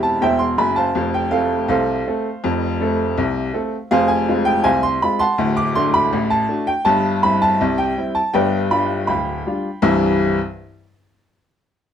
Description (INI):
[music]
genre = ragtime piano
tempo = 81 BPM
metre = 2/4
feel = straight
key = C major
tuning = A4 = 439 Hz
[part]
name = clear upright piano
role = solo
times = 0.0-10.4 s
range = D1 to E6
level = -16 LUFS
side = equal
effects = none
[sound]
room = moderate studio reverb, RT60 0.8 s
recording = close, detailed microphones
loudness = -16 LUFS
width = side -9 dB against mid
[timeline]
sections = 0.0-9.8 A section; 9.8-11.3 B section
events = none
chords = 0.0 C/E; 1.0 F; 3.9 Fm; 5.4 D; 6.9 C/G; 8.3 G7; 9.8 C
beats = 0.22 | 0.96 1.70 | 2.43 3.17 | 3.91 4.65 | 5.38 6.12 | 6.87 7.60 | 8.35 9.09 | 9.84